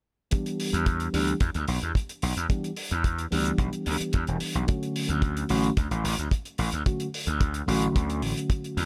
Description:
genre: nu-disco, nu disco.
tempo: 110 BPM.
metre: 4/4.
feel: straight.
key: E dorian.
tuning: A4 = 440 Hz.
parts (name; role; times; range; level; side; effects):
mellow tine electric piano; accompaniment; 0.3-8.9 s; D3 to G4; -33 LUFS; equal; lush chorus, sidechain pumping, low-pass filter.
hi-hat; drums; 0.3-8.9 s; none; -38 LUFS; equal; none.
kick drum; drums; 0.3-8.6 s; none; -27 LUFS; equal; none.
gritty slap bass; bass; 0.7-8.9 s; E1 to E2; -30 LUFS; equal; overdrive.
room: small room ambience.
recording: none.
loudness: -27 LUFS.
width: mono.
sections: 0.3-8.9 A section.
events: filter sweep on tine electric piano 0.3-8.9.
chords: 0.3 Em7; 4.7 Dmaj7.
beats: | 0.32 0.86 1.41 1.96 | 2.50 3.05 3.59 4.14 | 4.68 5.23 5.77 6.32 | 6.87 7.41 7.96 8.50.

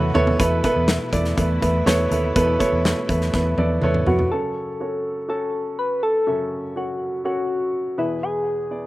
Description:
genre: piano-driven pop.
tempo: 123 BPM.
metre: 4/4.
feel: straight.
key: unclear.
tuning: A4 = 439 Hz.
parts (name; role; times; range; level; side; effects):
warm upright piano; accompaniment; 0.0-8.9 s; E2 to E5; -23 LUFS; right 1 dB; none.
warm studio string section; sustained chords; 0.0-4.3 s; B2 to F#4; -31 LUFS; left 2 dB; none.
vintage muted fingered electric bass; bass; 0.0-4.3 s; D#2 to E#2; -22 LUFS; equal; none.
loose indie drum kit; drums; 0.1-4.3 s; handclaps, hi-hat, kick drum, snare drum, toms; -24 LUFS; equal; none.
soft struck synth lead; melody; 4.1-8.9 s; E4 to B4; -23 LUFS; left 1 dB; chorus, slapback echo.
room: little or no reverb.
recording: none.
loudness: -19 LUFS.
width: side -17 dB against mid.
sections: 0.4-4.3 A section; 4.3-8.9 B section.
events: drum fill 0.0-0.4, 3.3-4.3.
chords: 0.4 Esus4; 4.3 F#m; 8.0 E.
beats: | 0.40 0.89 1.37 1.86 | 2.35 2.84 3.33 3.82 | 4.31 4.80 5.29 5.78 | 6.27 6.76 7.25 7.74 | 8.23 8.72.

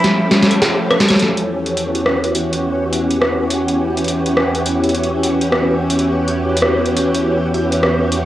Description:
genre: IDM.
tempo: 104 BPM.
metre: 4/4.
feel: swing 62% on 16ths.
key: unclear.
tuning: A4 = 441 Hz.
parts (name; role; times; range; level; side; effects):
rich cello; melody; 0.0-0.6 s; E4; -22 LUFS; right 2 dB; cassette tape, analog delay.
soft string machine; sustained chords; 0.0-8.3 s; E2 to A4; -16 LUFS; equal; ensemble chorus, cassette tape.
booming analog drum machine; drums; 0.0-8.3 s; claves, hi-hat, rim click, snare drum; -17 LUFS; equal; none.
room: wet booth ambience, RT60 0.2 s.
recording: home recording on cassette.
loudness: -14 LUFS.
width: side -13 dB against mid.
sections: 0.0-1.2 A section; 1.2-8.3 B section.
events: drum fill 0.0-1.2.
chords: 0.0 Fmaj9; 1.2 Em6.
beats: 0.04 0.62 | 1.20 1.77 2.35 2.93 | 3.50 4.08 4.66 5.23 | 5.81 6.39 6.96 7.54 | 8.12.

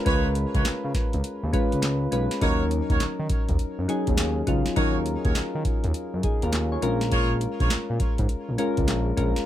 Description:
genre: R&B, new jack swing.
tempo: 102 BPM.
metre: 4/4.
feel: swing 64% on 16ths.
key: Eb minor.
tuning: A4 = 440 Hz.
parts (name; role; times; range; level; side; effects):
soft electric-piano-like synth keys; accompaniment; 0.0-9.5 s; Gb3 to Db5; -27 LUFS; left 2 dB; chorus.
clear horn section; stabs; 0.1-7.7 s; Eb4 to Db5; -31 LUFS; right 2 dB; digital delay.
smooth gliding synth bass; bass; 0.1-9.3 s; Bb1 to Eb3; -27 LUFS; equal; none.
booming analog drum machine; drums; 0.1-9.5 s; handclaps, hi-hat, kick drum, snare drum; -25 LUFS; equal; none.
room: light reverb.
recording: none.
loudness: -22 LUFS.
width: side -12 dB against mid.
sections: 0.0-9.5 A section.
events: none.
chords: 0.0 Db7; 2.4 Ebm7; 6.8 Bbm7.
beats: | 0.06 0.65 1.24 1.83 | 2.41 3.00 3.59 4.18 | 4.77 5.36 5.94 6.53 | 7.12 7.71 8.30 8.88.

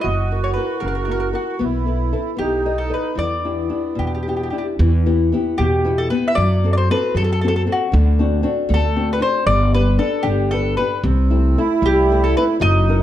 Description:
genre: italian folk, Italian serenade.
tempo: 76 BPM (dotted quarters).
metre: 6/8.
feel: straight.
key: E minor.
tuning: A4 = 441 Hz.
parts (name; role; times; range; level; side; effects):
mandolin; melody; 0.0-13.0 s; F#4 to E5; -21 LUFS; left 1 dB; none.
accordion; second line; 0.0-4.5, 11.0-13.0 s; B3 to F#4; -24 LUFS; right 8 dB; light tremolo tuning.
flamenco guitar; accompaniment; 0.0-13.0 s; B2 to D#5; -22 LUFS; left 4 dB; none.
upright bass; bass; 0.0-13.0 s; F#1 to F#2; -18 LUFS; right 1 dB; none.
room: light reverb.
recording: dark, warm production.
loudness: -16 LUFS.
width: side -12 dB against mid.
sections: 0.0-4.8 A section; 4.8-13.0 A section.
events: none.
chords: 0.0 F#7; 1.6 B7sus4; 2.4 B7; 3.2 Em7; 4.8 Em; 6.4 F#dim; 7.9 D7; 9.5 G; 11.0 C6.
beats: | 0.03 0.82 | 1.60 2.39 | 3.18 3.98 | 4.78 5.58 | 6.37 7.15 | 7.92 8.69 | 9.46 10.24 | 11.03 11.82 | 12.61.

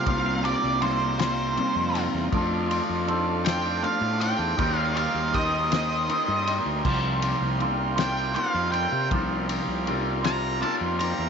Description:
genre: psychedelic rock.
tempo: 53 BPM (dotted quarters).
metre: 6/8.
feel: straight.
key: unclear.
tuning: A4 = 442 Hz.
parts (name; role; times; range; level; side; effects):
octave-fuzz lead guitar; melody; 0.0-11.3 s; C5 to Bb5; -28 LUFS; right 2 dB; distortion, slapback echo.
combo organ; sustained chords; 0.0-11.3 s; F4 to C6; -33 LUFS; right 13 dB; none.
electric guitar with an envelope filter; riff; 0.0-11.3 s; C3 to C5; -27 LUFS; equal; phaser, double-tracked left and right.
fuzz fingered electric bass; bass; 0.0-11.3 s; C2 to C3; -30 LUFS; equal; overdrive.
cloth-damped thuddy drum kit; drums; 0.1-11.2 s; crash cymbal, kick drum, ride cymbal, snare drum; -30 LUFS; left 5 dB; none.
room: light reverb, small room ambience.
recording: 1960s-style stereo, nothing above 7.7 kHz.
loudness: -22 LUFS.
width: side -6 dB against mid.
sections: 0.0-11.3 A section.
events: none.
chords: 0.0 C7sus4; 2.3 F6; 4.6 Eb6; 6.8 C7sus4.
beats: | 0.07 1.19 | 2.32 3.45 | 4.58 5.71 | 6.84 7.97 | 9.11 10.24.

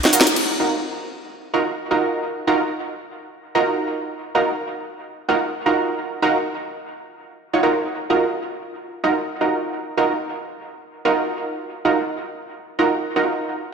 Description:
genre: bass house.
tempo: 128 BPM.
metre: 4/4.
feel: swing 59% on 16ths.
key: Eb minor.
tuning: A4 = 440 Hz.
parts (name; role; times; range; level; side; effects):
orchestra-hit-like synth stab; stabs; 0.0-13.7 s; Eb4 to Db5; -20 LUFS; right 2 dB; built-in reverb, dub echo.
garage drum kit; drums; 0.0-0.5 s; crash cymbal, hi-hat, shaker, snare drum; -17 LUFS; left 1 dB; none.
room: wet lush hall reverb, RT60 2.3 s.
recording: none.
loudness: -19 LUFS.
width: side -6 dB against mid.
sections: 0.4-13.7 A section.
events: drum fill 0.0-0.4; band accent 0.2.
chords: 0.4 Ebmadd9.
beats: | 0.36 0.83 1.30 1.77 | 2.24 2.71 3.18 3.65 | 4.11 4.58 5.05 5.52 | 5.99 6.46 6.93 7.39 | 7.86 8.33 8.80 9.27 | 9.74 10.21 10.68 11.14 | 11.61 12.08 12.55 13.02 | 13.49.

